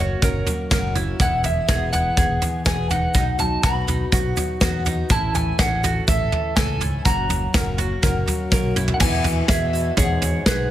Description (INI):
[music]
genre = indie folk with a building arrangement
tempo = 123 BPM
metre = 4/4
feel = straight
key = E major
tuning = A4 = 440 Hz
[part]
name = electric guitar through a small old amp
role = melody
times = 0.0-10.7 s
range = B4 to B5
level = -25 LUFS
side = right 1 dB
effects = harmonic tremolo
[part]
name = fingerpicked steel-string acoustic guitar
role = accompaniment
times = 0.0-9.0 s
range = E2 to A4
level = -29 LUFS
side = left 2 dB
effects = none
[part]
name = picked swing-style acoustic guitar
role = accompaniment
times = 0.0-10.7 s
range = E2 to A4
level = -32 LUFS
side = left 8 dB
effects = none
[part]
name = mandolin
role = arpeggios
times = 0.0-10.7 s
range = D#4 to A#4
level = -30 LUFS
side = right 5 dB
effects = analog delay
[part]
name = fingered electric bass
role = bass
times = 0.0-10.7 s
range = E1 to E2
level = -25 LUFS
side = equal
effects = none
[part]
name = soft brush drum kit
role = drums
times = 0.2-10.6 s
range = crash cymbal, kick drum, snare drum, toms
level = -21 LUFS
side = equal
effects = none
[part]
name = egg shaker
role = percussion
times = 0.2-10.6 s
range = none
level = -33 LUFS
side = right 5 dB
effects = none
[part]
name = clear French horn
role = second line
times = 8.9-10.7 s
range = G#2 to E3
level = -29 LUFS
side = left 5 dB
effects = none
[sound]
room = light reverb, small room ambience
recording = none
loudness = -18 LUFS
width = side -12 dB against mid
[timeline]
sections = 0.0-9.0 A section; 9.0-10.7 B section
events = drum fill 8.5-9.0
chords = 0.0 F#; 1.2 E; 3.1 B; 5.1 A; 7.1 F#; 9.0 Eadd9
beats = 0.22 0.71 | 1.20 1.68 2.17 2.66 | 3.15 3.63 4.12 4.61 | 5.10 5.59 6.08 6.56 | 7.05 7.54 8.03 8.52 | 9.00 9.49 9.98 10.46